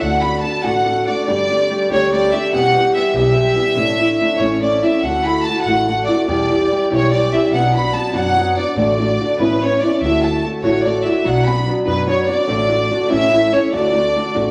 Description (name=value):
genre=mexican folk, mariachi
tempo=96 BPM (dotted quarters)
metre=6/8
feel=straight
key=D major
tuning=A4 = 440 Hz
part: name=clear studio violin section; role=melody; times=0.0-14.5 s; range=B4 to B5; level=-20 LUFS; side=equal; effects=none
part: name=nylon-string guitar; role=accompaniment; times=0.0-14.5 s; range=E2 to G4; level=-20 LUFS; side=equal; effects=none
part: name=upright bass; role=bass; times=0.0-14.5 s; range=E1 to F#2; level=-26 LUFS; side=equal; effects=none
room=wet large studio reverb, RT60 1.3 s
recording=vinyl crackle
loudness=-16 LUFS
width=mono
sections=0.0-14.5 A section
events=none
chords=0.0 D; 1.3 Gsus2; 2.5 Em; 3.8 Asus4; 4.4 A; 5.0 Dadd9; 6.3 Em; 7.5 Bm; 8.8 D/A; 9.4 Aadd9; 10.0 Dadd9; 11.3 Bm; 12.5 D/A; 13.1 A; 13.7 D